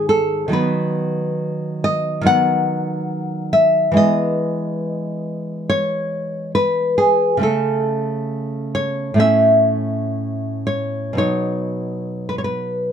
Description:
romantic piece for solo classical guitar; 53-72 BPM; 4/4; rubato; E major; A4 = 440 Hz
nylon-string guitar; solo; 0.0-12.9 s; G#2 to F#5; -17 LUFS; equal
light reverb; dark, warm production; -17 LUFS; side -8 dB against mid
0.0-12.9 A section
0.0 G#m; 0.5 B/D#; 4.0 E; 7.4 A/C#; 9.2 A; 11.2 B

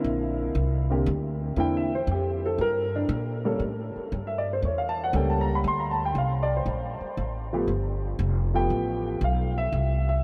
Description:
jazz piano trio; 118 BPM; 4/4; swing 69% on 8ths; C mixolydian; A4 = 443 Hz
dark upright piano; melody; 0.0-10.2 s; D3 to C6; -29 LUFS; equal; subtle chorus, tape echo
upright bass; bass; 0.0-10.2 s; F1 to Bb2; -30 LUFS; equal
moderate huge ambient reverb, RT60 6.8 s; dreamy mix soaked in reverb; -27 LUFS; mono
0.0-10.2 A section
upright piano solo 0.0-10.2
0.0 C9; 3.6 A7b9; 5.6 Dm7; 7.7 G9; 9.7 C

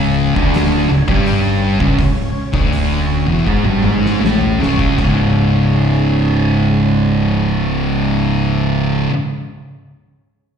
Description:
stoner and doom metal; 78-84 BPM; 4/4; straight; A4 = 440 Hz
soft string machine; sustained chords; 0.0-8.8 s; C#4 to G#5; -28 LUFS; equal; phaser, ensemble chorus
thick fuzz guitar; riff; 0.0-9.1 s; C#2 to A3; -17 LUFS; left 8 dB; distortion
thick fuzz guitar; riff; 0.0-9.1 s; C#2 to A3; -17 LUFS; right 8 dB; distortion, slapback echo
modern bright fingered electric bass; bass; 0.0-9.0 s; C#1 to A1; -21 LUFS; equal; overdrive
oversized low-tuned drum kit; drums; 0.4-5.2 s; china cymbal, hi-hat, kick drum, snare drum, toms; -20 LUFS; equal
light reverb; live gig heard through the venue's PA, recital hall reverb; -12 LUFS; side -7 dB against mid
0.0-5.0 A section; 5.0-8.1 B section
slowing down 0.0-5.0; drum fill 3.5-5.0
0.0 C#m; 5.0 C#5

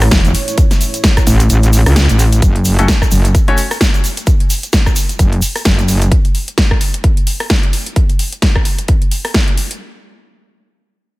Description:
bass house; 130 BPM; 4/4; swing 58% on 16ths; A4 = 440 Hz
dark analog pad; sustained chords; 0.0-2.4 s; A3 to C#5; -25 LUFS; right 3 dB; chorus, sidechain pumping
metallic wobble bass; bass; 0.0-6.1 s; E1 to C#2; -10 LUFS; equal; distortion, chorus, overdrive, sidechain pumping
big-room dance drum kit; drums; 0.0-9.8 s; hi-hat, rim click, snare drum; -17 LUFS; equal
tube shaker; percussion; 0.0-6.1 s; -25 LUFS; right 1 dB
electronic kick drum; drums; 0.1-9.5 s; -13 LUFS; equal
bright baby grand piano; stabs; 2.8-3.5 s; A3 to C#5; -20 LUFS; left 3 dB; sidechain pumping, digital delay
digital ambience; -10 LUFS; side -20 dB against mid
0.0-2.4 A section; 2.4-9.8 B section
drop 0.0-2.4; kick drops out 1.5-2.4
0.0 A; 2.4 N.C.

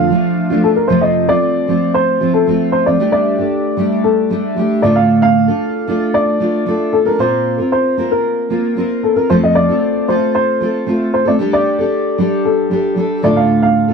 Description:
pop; 114 BPM; 4/4; straight; A4 = 440 Hz
dark upright piano; melody; 0.0-13.9 s; A4 to F5; -16 LUFS; left 2 dB
fingerpicked steel-string acoustic guitar; accompaniment; 0.0-13.9 s; F2 to Bb4; -14 LUFS; right 1 dB; double-tracked left and right
light reverb; dry, close 1970s-style studio recording; -12 LUFS; side -5 dB against mid
0.9-13.9 A section
0.0 Dm/F; 0.9 F; 3.0 Gsus2; 4.8 Dm/A; 7.2 Bbsus2; 9.3 F; 11.4 Gsus2; 13.2 Dm/A

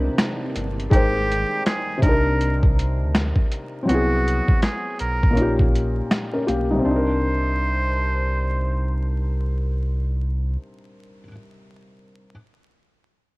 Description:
lo-fi hip hop; 81 BPM; 4/4; swing 62% on 16ths; C minor; A4 = 440 Hz
felt-muted upright piano; accompaniment; 0.0-12.3 s; Bb2 to G5; -24 LUFS; left 1 dB; low-pass filter, cassette tape
granular cloud pad; sustained chords; 0.0-0.9 s; C4; -35 LUFS; right 2 dB; built-in reverb, low-pass filter, cassette tape
sub bass with octave; bass; 0.0-10.6 s; G1 to D2; -23 LUFS; equal
boom bap sampler-style drum kit; drums; 0.2-6.7 s; finger snaps, hi-hat, kick drum, snare drum; -20 LUFS; equal; overdrive
trumpet with straight mute; melody; 0.9-9.0 s; Gb4 to C5; -27 LUFS; right 2 dB; low-pass filter, cassette tape, analog delay
light reverb; home recording on cassette, vinyl crackle; -19 LUFS; side -23 dB against mid
0.9-6.8 A section; 6.8-9.8 B section
break 0.0-0.9
0.0 Cm9; 0.9 Abmaj9; 2.0 Cm9; 3.9 Ab7alt/C; 5.4 Eb9/Bb; 6.8 Cm9

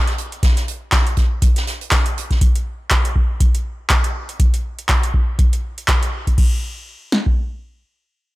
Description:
acid house; 121 BPM; 4/4; swing 57% on 16ths
electro analog drum machine; drums; 0.1-6.5 s; crash cymbal, handclaps, hi-hat; -22 LUFS; equal; overdrive
soft-mallet drum kit; drums; 0.1-2.4 s; hi-hat, snare drum; -28 LUFS; right 2 dB; sidechain pumping on hats, high-pass filter on hats, high-pass filter on snare, high-pass filter on room
electro analog drum machine; drums; 0.4-7.4 s; kick drum, snare drum; -16 LUFS; equal; overdrive
little or no reverb; -16 LUFS; side -19 dB against mid
0.0-6.4 A section; 6.4-8.4 B section

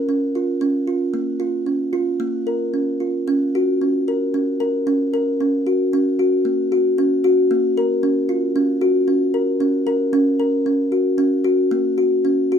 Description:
contemporary instrumental, contemporary; 114 BPM; 5/4; straight; A4 = 440 Hz
kalimba; solo; 0.1-12.6 s; Bb3 to Bb4; -17 LUFS; equal
light reverb; -17 LUFS; side -7 dB against mid
0.0-12.6 A section

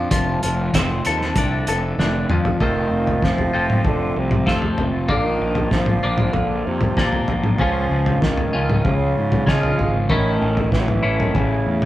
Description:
psychedelic rock; 96 BPM; 4/4; straight; A4 = 440 Hz
twelve-string electric guitar; riff; 0.0-11.9 s; A2 to A4; -22 LUFS; left 2 dB; phaser
fuzz fingered electric bass; bass; 0.0-11.9 s; F1 to Db3; -23 LUFS; right 1 dB; overdrive
cloth-damped thuddy drum kit; drums; 0.1-11.9 s; hi-hat, kick drum, snare drum, toms; -21 LUFS; equal
warm bassoon; melody; 2.6-11.9 s; C3 to Ab3; -24 LUFS; right 3 dB
light reverb; band playing live in one room; -17 LUFS; side -14 dB against mid
0.0-2.6 A section; 2.6-11.9 B section
drum fill 2.0-2.6
0.0 Dm7/F; 2.6 F; 5.1 Bb; 7.6 Db; 10.1 A

